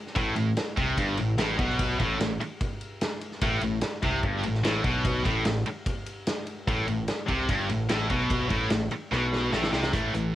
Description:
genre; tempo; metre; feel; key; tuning
hard rock; 147 BPM; 4/4; straight; A minor; A4 = 439 Hz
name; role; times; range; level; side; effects
big rock drum kit; drums; 0.1-10.2 s; hi-hat, kick drum, ride cymbal, snare drum; -30 LUFS; equal; none
scooped high-gain guitar; riff; 0.2-10.3 s; G2 to A3; -30 LUFS; right 6 dB; distortion
tight distorted guitar; riff; 0.2-10.3 s; G2 to A3; -29 LUFS; left 5 dB; distortion
growling picked electric bass; bass; 0.2-10.3 s; G1 to C2; -31 LUFS; equal; overdrive
room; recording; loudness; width
little or no reverb; home recording on cassette; -25 LUFS; side -13 dB against mid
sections
0.0-9.9 A section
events
drum fill 9.1-9.9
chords
0.0 Am

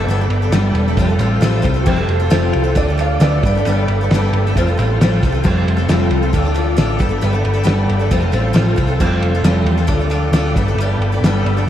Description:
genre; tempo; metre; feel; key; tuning
folk rock and heartland rock; 135 BPM; 4/4; straight; unclear; A4 = 440 Hz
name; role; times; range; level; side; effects
picked twelve-string acoustic guitar; accompaniment; 0.0-11.7 s; D3 to A4; -18 LUFS; left 2 dB; wide subtle chorus
tonewheel organ; sustained chords; 0.0-11.7 s; A4 to D6; -26 LUFS; right 2 dB; slow rotary speaker, chorus vibrato
hollow-body short-scale picked electric bass; bass; 0.0-11.7 s; E1 to E2; -17 LUFS; equal; none
cloth-damped thuddy drum kit; drums; 0.3-11.6 s; crash cymbal, kick drum, ride cymbal, snare drum; -19 LUFS; equal; none
warm upright piano; second line; 1.8-4.5 s; F#4 to F5; -24 LUFS; right 4 dB; lush chorus
room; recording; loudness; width
moderate huge ambient reverb, RT60 4.2 s; dreamy mix soaked in reverb, cassette tape; -13 LUFS; side -11 dB against mid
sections
0.0-11.7 A section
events
none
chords
0.0 Gadd9; 1.0 Fadd9; 2.8 Dm; 3.4 Gadd9; 4.6 Fadd9; 6.3 Dm; 7.0 Gadd9; 8.1 Fadd9; 9.9 Dm; 10.6 Gadd9

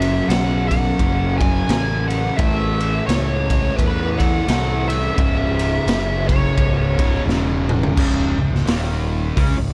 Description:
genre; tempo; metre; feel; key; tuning
stoner and doom metal; 86 BPM; 4/4; swing 59% on 8ths; C# minor; A4 = 435 Hz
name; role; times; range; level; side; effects
fuzz lead guitar; melody; 0.0-7.2 s; B4 to G#5; -27 LUFS; equal; wah, distortion, tape echo
fuzz guitar; riff; 0.0-9.7 s; C#2 to C#4; -24 LUFS; equal; distortion
fuzz picked electric bass; bass; 0.0-9.7 s; C#1 to E2; -24 LUFS; equal; overdrive, tube saturation
raw garage drum kit; drums; 0.0-9.6 s; crash cymbal, hi-hat, kick drum, ride cymbal, snare drum, toms; -23 LUFS; equal; none
room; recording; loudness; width
little or no reverb; dark, warm production; -19 LUFS; mono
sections
0.0-8.0 A section; 8.0-9.7 B section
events
drum fill 7.3-8.0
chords
0.0 F#m; 2.4 A; 5.2 C#m; 8.0 N.C.

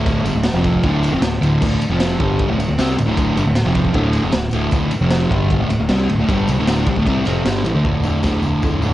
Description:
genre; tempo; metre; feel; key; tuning
garage rock duo or trio; 154 BPM; 4/4; straight; unclear; A4 = 440 Hz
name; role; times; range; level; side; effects
fuzz guitar; riff; 0.0-8.9 s; D2 to C4; -17 LUFS; equal; distortion
growling fingered electric bass; bass; 0.0-8.9 s; D1 to D2; -22 LUFS; equal; overdrive
raw garage drum kit; drums; 0.1-8.9 s; crash cymbal, kick drum, ride cymbal, snare drum, toms; -21 LUFS; equal; cassette tape
tambourine; percussion; 0.1-8.9 s; none; -40 LUFS; left 6 dB; none
room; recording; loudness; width
light reverb, small room ambience; home recording on cassette, nothing above 11.0 kHz; -15 LUFS; side -14 dB against mid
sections
0.0-7.8 A section; 7.8-8.9 B section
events
none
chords
0.0 D5

